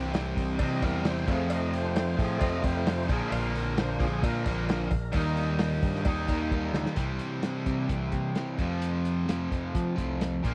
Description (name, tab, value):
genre	classic rock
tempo	132 BPM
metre	4/4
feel	straight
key	F mixolydian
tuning	A4 = 439 Hz
part	distorted electric guitar	riff	0.0-10.5 s	F2 to Eb4	-37 LUFS	equal	overdrive
part	overdriven semi-hollow guitar	riff	0.0-10.5 s	Bb2 to F4	-35 LUFS	equal	none
part	growling picked electric bass	bass	0.0-10.5 s	Bb1 to F3	-35 LUFS	equal	overdrive
part	vintage drum kit	drums	0.1-10.5 s	hi-hat, kick drum, snare drum	-33 LUFS	equal	none
part	cowbell	percussion	0.1-6.9 s	none	-44 LUFS	equal	none
part	tonewheel organ	sustained chords	0.6-6.9 s	F3 to F5	-36 LUFS	equal	slow rotary speaker, overdrive
room	light reverb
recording	dry, close 1970s-style studio recording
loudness	-29 LUFS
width	mono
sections	0.0-7.0 A section; 7.0-10.5 B section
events	tonewheel organ solo 0.0-7.0; drum fill 6.5-7.0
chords	0.0 C; 1.3 F; 3.1 Bb; 5.1 Eb; 7.0 C; 8.6 F